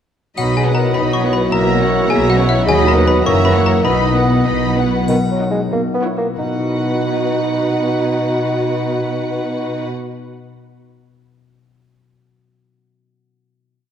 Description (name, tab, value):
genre	cinematic, playful, whimsical film cue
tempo	88-105 BPM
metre	2/4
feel	straight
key	B major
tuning	A4 = 440 Hz
part	rich chamber violin section	melody	0.4-9.9 s	F#5 to B5	-26 LUFS	left 4 dB	none
part	trough xylophone with plastic mallets	melody	0.4-4.4 s	E5 to C#6	-23 LUFS	left 4 dB	none
part	clear oboe	second line	0.4-4.7 s	D#5 to E5	-24 LUFS	right 2 dB	none
part	dark clarinet	second line	0.4-4.4 s	E4 to C#5	-21 LUFS	equal	none
part	rich studio violin section	second line	0.4-9.9 s	B4 to E5	-27 LUFS	left 2 dB	none
part	mellow bassoon	accompaniment	0.4-9.9 s	D#3 to D#4	-21 LUFS	right 2 dB	none
part	warm symphonic viola section	accompaniment	0.4-9.9 s	A#3 to F#4	-23 LUFS	right 1 dB	none
part	warm French horn section	sustained chords	0.4-4.8 s	D#3 to B4	-22 LUFS	left 1 dB	none
part	concert harp	arpeggios	0.4-10.7 s	F#2 to D#5	-23 LUFS	left 5 dB	none
part	clear chamber double bass section	bass	0.4-5.0 s	F#1 to D#2	-20 LUFS	right 1 dB	none
part	warm chamber cello section	bass	0.4-9.9 s	D#2 to B2	-22 LUFS	right 2 dB	none
part	triangle	percussion	0.4-1.5, 5.1-6.3 s	none	-41 LUFS	left 3 dB	none
room	wet scoring stage reverb, RT60 2.1 s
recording	dark, warm production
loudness	-14 LUFS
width	side -8 dB against mid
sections	0.4-5.1 A section; 5.1-6.4 coda; 6.4-9.1 final chord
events	slowing down 3.3-6.4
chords	0.4 B; 1.5 F#7/B; 2.7 B/D#; 3.3 F#7; 3.8 B; 5.7 F#5/B; 6.4 B